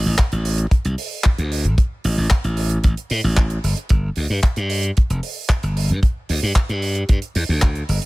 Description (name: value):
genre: nu-disco, nu disco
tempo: 113 BPM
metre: 4/4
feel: straight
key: unclear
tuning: A4 = 439 Hz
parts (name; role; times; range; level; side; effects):
- glassy slap bass; bass; 0.1-8.0 s; F1 to A2; -19 LUFS; equal; sidechain pumping
- damped 70s drum kit; drums; 0.2-8.1 s; handclaps, hi-hat; -26 LUFS; right 1 dB; none
- kick drum; drums; 0.2-7.7 s; none; -15 LUFS; equal; none
room: little or no reverb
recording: none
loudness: -17 LUFS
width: side -20 dB against mid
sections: 0.0-8.1 A section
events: none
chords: none